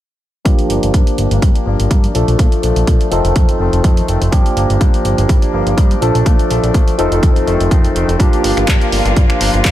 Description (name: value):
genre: filtered disco house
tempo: 124 BPM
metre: 4/4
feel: swing 54% on 16ths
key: G minor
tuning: A4 = 441 Hz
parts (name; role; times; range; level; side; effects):
- barky tine electric piano; accompaniment; 0.4-9.7 s; F3 to A4; -17 LUFS; equal; phaser, vintage 12-bit sampler grit, sidechain pumping, low-pass filter
- direct-recorded clean electric guitar; riff; 0.5-9.7 s; Eb3 to D4; -22 LUFS; left 4 dB; wide subtle chorus, sidechain pumping, low-pass filter
- fat analog bass; bass; 0.5-9.7 s; F1 to Bb2; -17 LUFS; equal; sidechain pumping, low-pass filter
- electronic kick drum; drums; 0.5-9.7 s; none; -12 LUFS; equal; none
- punchy analog drum machine; drums; 0.5-9.7 s; finger snaps, handclaps, hi-hat; -23 LUFS; right 1 dB; sidechain pumping on hats
- clear symphonic violin section; sustained chords; 8.2-9.7 s; F4 to F5; -22 LUFS; equal; vintage 12-bit sampler grit, sidechain pumping, low-pass filter
room: light reverb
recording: none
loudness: -11 LUFS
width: side -13 dB against mid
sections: 0.5-9.7 A section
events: filter sweep 0.5-9.7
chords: 0.5 Gm7; 2.1 Bbmaj7; 3.1 F7; 4.3 Gm7; 6.0 Bbmaj7; 7.0 F7; 8.2 Gm7